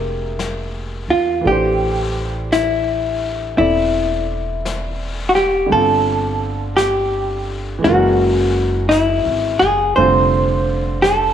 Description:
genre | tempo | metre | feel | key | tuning
jazz ballad | 56 BPM | 4/4 | swing 66% on 8ths | unclear | A4 = 438 Hz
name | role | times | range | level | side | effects
vintage hollow-body jazz guitar | melody | 0.0-11.3 s | E4 to C5 | -16 LUFS | left 1 dB | none
clear concert grand piano | accompaniment | 0.0-11.3 s | D3 to E5 | -23 LUFS | right 2 dB | none
upright bass | bass | 0.0-11.3 s | E1 to E2 | -23 LUFS | equal | none
vintage brush drum kit | drums | 0.4-11.3 s | brushed snare drum, hi-hat, snare drum | -31 LUFS | left 6 dB | none
room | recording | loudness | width
moderate plate reverb, RT60 2.0 s | 1960s-style stereo | -15 LUFS | side -9 dB against mid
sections
0.0-11.3 A section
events
none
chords
0.0 Bb13; 1.4 Am7; 5.7 G9sus4; 7.8 Gb9; 10.0 F6

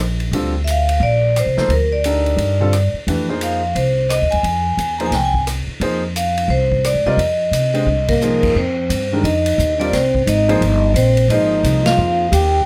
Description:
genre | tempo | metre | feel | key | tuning
modal jazz | 175 BPM | 4/4 | swing 62% on 8ths | F dorian from 8.6 s | A4 = 440 Hz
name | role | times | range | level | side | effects
upright bass | bass | 0.0-12.6 s | G1 to C3 | -21 LUFS | equal | none
swinging big-band drum kit | drums | 0.2-12.4 s | crash cymbal, hi-hat, kick drum, ride cymbal, rim click, snare drum | -28 LUFS | equal | none
clear concert grand piano | accompaniment | 0.3-12.3 s | D3 to Eb5 | -24 LUFS | equal | none
vibraphone with medium hard mallets | melody | 0.6-12.7 s | Bb4 to Bb5 | -20 LUFS | equal | none
breathy trombone | second line | 8.1-12.6 s | Bb3 to G4 | -24 LUFS | equal | none
room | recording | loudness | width
light reverb | close, detailed microphones | -17 LUFS | mono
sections
0.0-8.6 A section; 8.6-12.7 B section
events
drum fill 7.9-8.2; band accent 8.0, 11.8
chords
0.0 Gm11; 3.1 Fm11; 8.6 Fm9

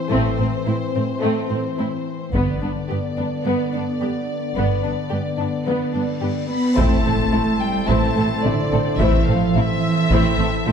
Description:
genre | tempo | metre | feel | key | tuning
cinematic, epic orchestral film score | 108 BPM | 4/4 | straight | A minor | A4 = 440 Hz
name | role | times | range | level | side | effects
rich symphonic violin section | melody | 0.0-10.7 s | C5 to B5 | -27 LUFS | left 4 dB | none
dark French horn section | sustained chords | 0.0-10.3 s | D3 to C4 | -27 LUFS | left 3 dB | none
warm symphonic violin section | second line | 0.1-10.7 s | A3 to C5 | -27 LUFS | left 4 dB | none
warm symphonic viola section | accompaniment | 0.1-10.7 s | A3 to C4 | -27 LUFS | right 2 dB | none
warm symphonic cello section | bass | 0.1-10.7 s | G2 to B3 | -23 LUFS | right 3 dB | none
warm symphonic double bass section | bass | 0.1-10.7 s | G1 to A1 | -24 LUFS | right 3 dB | none
taiko ensemble | drums | 2.3-3.4, 6.8-10.6 s | none | -23 LUFS | equal | none
cymbal swell and impact | sound effects | 6.2-9.0 s | none | -30 LUFS | left 1 dB | none
chamber organ, sparkling flutes | sustained chords | 6.8-10.7 s | C4 to C5 | -26 LUFS | left 1 dB | none
room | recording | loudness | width
wet scoring stage reverb, RT60 1.7 s | none | -18 LUFS | side -7 dB against mid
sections
0.0-6.8 A section; 6.8-10.7 B section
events
build-up 0.0-6.8; cymbal swell 6.2-6.8; impact 6.8-9.0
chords
0.0 Am; 2.3 G; 6.8 Am

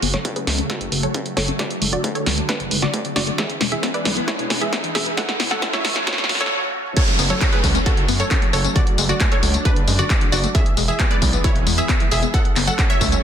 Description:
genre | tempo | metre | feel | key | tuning
uplifting trance | 134 BPM | 4/4 | straight | F# minor | A4 = 440 Hz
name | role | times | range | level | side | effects
wide unison pluck | melody | 0.0-13.2 s | D4 to F#5 | -25 LUFS | right 1 dB | sidechain pumping, ping-pong delay
analog string pad | sustained chords | 0.0-13.2 s | C#3 to D4 | -28 LUFS | right 1 dB | ensemble chorus, sidechain pumping
tight sequenced synth | arpeggios | 0.0-13.2 s | C#3 to F#4 | -28 LUFS | left 5 dB | chorus, sidechain pumping, ping-pong delay
gritty driven synth bass | bass | 0.0-13.2 s | E1 to F#2 | -24 LUFS | equal | sidechain pumping
punchy analog drum machine | drums | 0.0-13.2 s | crash cymbal, handclaps, hi-hat, snare drum, tambourine | -22 LUFS | equal | small room ambience
riser and downlifter | sound effects | 0.0-10.5 s | none | -29 LUFS | right 1 dB | none
electronic kick drum | drums | 0.2-13.1 s | none | -21 LUFS | equal | distortion, high-pass filter on kick, small room ambience
room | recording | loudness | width
light reverb, digital ambience | dense, heavily limited modern master, high-pass filter | -17 LUFS | side -9 dB against mid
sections
0.0-7.0 A section; 7.0-13.2 B section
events
build-up 0.0-7.0; drum fill 0.0-6.5; riser 0.0-6.5; filter sweep on synth pluck 0.0-7.0; filter sweep on synth arpeggio sound 0.0-7.0; filter sweep 0.0-7.0; break 6.5-7.0; drop 7.0-13.2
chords
0.0 F#m; 1.6 D/F#; 3.4 E; 5.2 F#m; 8.8 D/F#; 10.5 E; 12.3 F#m

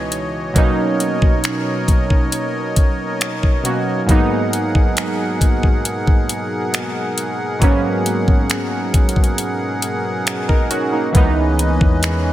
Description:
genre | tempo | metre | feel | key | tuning
contemporary R&B | 68 BPM | 4/4 | straight | G# minor | A4 = 441 Hz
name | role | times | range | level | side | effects
warm analog keys | accompaniment | 0.0-12.3 s | C#2 to A#4 | -20 LUFS | right 2 dB | chorus
accordion | sustained chords | 0.0-12.3 s | B2 to F#5 | -23 LUFS | left 1 dB | light tremolo tuning
trap drum kit | drums | 0.1-12.2 s | finger snaps, hi-hat, kick drum | -16 LUFS | equal | none
long sustained 808-style bass | bass | 11.1-12.3 s | C#2 to E2 | -18 LUFS | equal | none
room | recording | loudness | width
light reverb | none | -15 LUFS | side -14 dB against mid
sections
0.0-12.3 A section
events
none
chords
0.0 C#m9; 0.6 Bmaj9; 4.1 G#m9; 11.1 C#m9

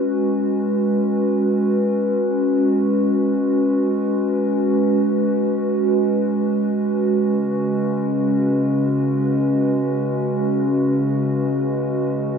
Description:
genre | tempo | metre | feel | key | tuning
ambient | free time | none | none | unclear | A4 = 440 Hz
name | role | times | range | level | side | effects
warbly tape-like pad | solo | 0.0-12.4 s | Db3 to Cb5 | -17 LUFS | equal | chorus, built-in reverb, ping-pong delay
room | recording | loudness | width
wet lush hall reverb, RT60 2.4 s | none | -17 LUFS | side -6 dB against mid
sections
0.0-12.4 A section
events
none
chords
0.0 Db7sus4; 7.1 Abm/Db

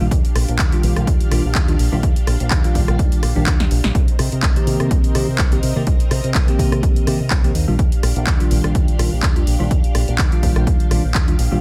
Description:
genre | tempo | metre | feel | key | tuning
filtered disco house | 125 BPM | 4/4 | swing 54% on 16ths | Eb major | A4 = 440 Hz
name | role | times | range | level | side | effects
bell-like tine electric piano | accompaniment | 0.0-11.6 s | Eb3 to G4 | -25 LUFS | equal | phaser, vintage 12-bit sampler grit, sidechain pumping
string machine, full ensemble | sustained chords | 0.0-11.6 s | C4 to F5 | -32 LUFS | equal | ensemble chorus, sidechain pumping
fingered electric bass with an envelope filter | bass | 0.0-11.6 s | Bb1 to C3 | -22 LUFS | equal | sidechain pumping
electronic kick drum | drums | 0.1-11.3 s | none | -20 LUFS | equal | studio reverb
house drum kit | drums | 0.1-11.5 s | handclaps, hi-hat, rim click, snare drum | -27 LUFS | equal | sidechain pumping on hats, studio reverb
room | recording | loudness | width
digital ambience | none | -17 LUFS | mono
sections
0.0-11.6 A section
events
drum fill 3.6-4.0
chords
0.0 Ebmaj9; 4.0 Cm7; 7.6 Ebmaj9

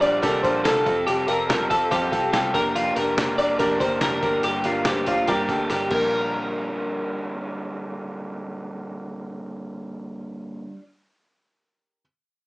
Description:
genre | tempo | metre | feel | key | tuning
jangly indie pop | 142 BPM | 4/4 | straight | Bb major | A4 = 440 Hz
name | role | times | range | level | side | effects
bright upright piano | accompaniment | 0.0-12.0 s | D4 to Bb5 | -26 LUFS | right 1 dB | none
raw garage guitar | accompaniment | 0.0-10.9 s | Bb2 to A4 | -28 LUFS | right 1 dB | overdrive
twelve-string electric guitar | arpeggios | 0.0-7.4 s | F4 to D5 | -23 LUFS | left 1 dB | lush chorus
vintage muted picked electric bass | bass | 0.0-10.7 s | F1 to G2 | -37 LUFS | equal | none
trip hop sampler-style drum kit | drums | 0.0-6.0 s | crash cymbal, hi-hat, kick drum, snare drum | -29 LUFS | equal | none
room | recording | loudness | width
moderate studio reverb, RT60 0.6 s | rough home demo mix, small speaker sound | -20 LUFS | side -22 dB against mid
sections
0.0-6.1 A section; 6.1-9.5 B section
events
upright piano fill 4.9-6.1; drum fill 5.7-6.1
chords
0.0 Bb6; 0.9 Fadd9; 2.5 Bb6/F; 4.2 Gm; 5.9 Bb6

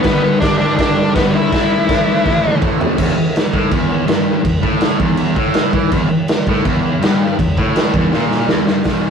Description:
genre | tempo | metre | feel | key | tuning
garage rock duo or trio | 164 BPM | 4/4 | straight | unclear | A4 = 440 Hz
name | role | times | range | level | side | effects
octave-fuzz lead guitar | melody | 0.0-2.6 s | B3 to E4 | -17 LUFS | left 2 dB | distortion
fuzz guitar | riff | 0.0-9.1 s | E2 to A3 | -16 LUFS | equal | distortion
raw garage drum kit | drums | 0.0-8.9 s | crash cymbal, hi-hat, kick drum, snare drum, toms | -16 LUFS | equal | none
room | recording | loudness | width
light reverb | rough rehearsal-room recording | -12 LUFS | side -6 dB against mid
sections
0.0-3.0 A section; 3.0-8.9 B section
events
drum fill 2.3-3.0, 8.1-8.9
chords
0.0 G; 1.5 A5; 3.0 Emadd11

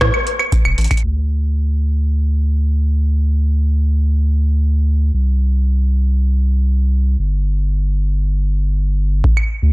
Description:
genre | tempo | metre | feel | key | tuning
IDM | free time | none | none | unclear | A4 = 440 Hz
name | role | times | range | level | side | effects
warm sub bass | bass | 0.0-9.7 s | E1 to A2 | -14 LUFS | equal | none
booming analog drum machine | drums | 0.0-1.1, 9.4-9.5 s | claves, hi-hat, rim click | -18 LUFS | right 1 dB | digital delay
electronic kick drum | drums | 0.0-1.0, 9.2-9.3 s | none | -16 LUFS | equal | none
room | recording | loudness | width
little or no reverb | blown-out, overdriven recording, overdrive, low-pass filter | -14 LUFS | side -22 dB against mid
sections
0.0-1.0 A section; 1.0-9.2 B section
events
drum fill 0.8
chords
none

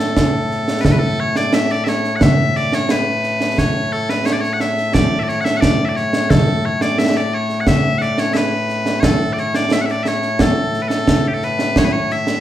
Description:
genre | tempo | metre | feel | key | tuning
scottish traditional, Scottish pipe music | 88 BPM | 2/4 | straight | A major | A4 = 440 Hz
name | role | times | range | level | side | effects
loud bright bagpipes | melody | 0.0-12.4 s | A2 to F#5 | -18 LUFS | left 2 dB | none
concert snare drum and concert bass drum | drums | 0.2-12.4 s | none | -17 LUFS | right 1 dB | none
room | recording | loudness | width
wet large studio reverb, RT60 0.8 s | band playing live in one room | -14 LUFS | side -12 dB against mid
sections
0.8-11.8 A section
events
none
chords
none

